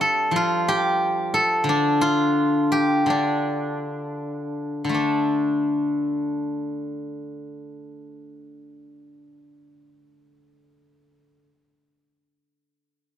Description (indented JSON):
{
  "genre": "chinese traditional, Chinese solo plucked strings",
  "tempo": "52-92 BPM",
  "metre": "2/4",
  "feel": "rubato",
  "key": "D yu mode",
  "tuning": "A4 = 439 Hz",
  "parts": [
    { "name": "steel-string zither", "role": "solo", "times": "0.0-11.5 s", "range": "D3 to A4", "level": "-21 LUFS", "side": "left 1 dB", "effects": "none" }
  ],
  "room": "light reverb",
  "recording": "close, detailed microphones",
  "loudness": "-20 LUFS",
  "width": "side -10 dB against mid",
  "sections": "0.0-5.0 A section; 5.0-9.2 B section",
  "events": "slowing down 1.7-5.0",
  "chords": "none"
}